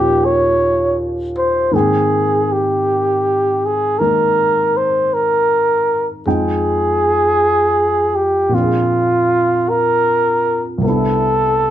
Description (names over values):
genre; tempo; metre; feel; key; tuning
jazz ballad; 53 BPM; 4/4; swing 68% on 8ths; unclear; A4 = 440 Hz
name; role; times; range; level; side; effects
breathy flugelhorn; melody; 0.0-11.7 s; F4 to Db5; -14 LUFS; equal; none
warm grand piano; accompaniment; 0.0-11.7 s; C2 to G5; -20 LUFS; equal; none
room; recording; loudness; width
moderate club reverb, RT60 0.7 s; dark, warm production; -13 LUFS; side -11 dB against mid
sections
0.0-11.7 A section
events
none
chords
0.0 Eb9; 1.7 Abmaj9; 6.3 Fm7; 8.5 Bb9; 10.8 Cmaj7